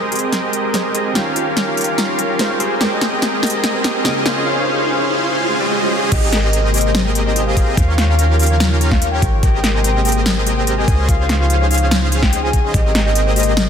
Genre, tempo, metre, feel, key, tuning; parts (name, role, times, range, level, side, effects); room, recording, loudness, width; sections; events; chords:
future bass; 145 BPM; 4/4; half-time; Ab major; A4 = 437 Hz
bright concert grand piano; accompaniment; 0.0-4.4 s; Db3 to G5; -26 LUFS; right 4 dB; sidechain pumping, digital delay
airy breathy pad; sustained chords; 0.0-13.7 s; C3 to G5; -27 LUFS; left 1 dB; chorus, sidechain pumping
concert harp; arpeggios; 0.0-13.7 s; F4 to F5; -26 LUFS; equal; sidechain pumping, low-pass filter, digital delay
supersaw chords; riff; 0.0-13.7 s; C4 to F5; -20 LUFS; equal; cassette tape, sidechain pumping, low-pass filter, digital delay
riser and swell; sound effects; 0.0-6.1 s; -24 LUFS; right 1 dB
big-room dance drum kit; drums; 0.1-13.7 s; crash cymbal, hi-hat, snare drum; -20 LUFS; left 1 dB; overdrive
soft octave-layered synth lead; melody; 6.1-13.6 s; Eb5 to Ab5; -22 LUFS; left 2 dB; chorus, phaser, sidechain pumping, ping-pong delay
warm 808-style bass; bass; 6.1-13.7 s; Ab1 to Eb2; -17 LUFS; equal; sidechain pumping
electronic kick drum; drums; 6.1-12.8 s; -16 LUFS; equal
moderate lush hall reverb, RT60 2.1 s; dense, heavily limited modern master; -14 LUFS; side -8 dB against mid
0.0-6.1 A section; 6.1-13.7 B section
build-up 0.0-6.1; drum fill 0.0-4.5; riser 0.0-6.1; filter sweep on supersaw synth 0.0-6.1; filter sweep on harp 0.0-6.1; swell 5.3-6.1; drop 6.1-13.7
0.0 Abmaj9; 1.2 Eb9; 2.6 Abmaj9; 7.8 Eb9; 9.2 Abmaj9; 10.9 Dbmaj9; 12.7 Abmaj9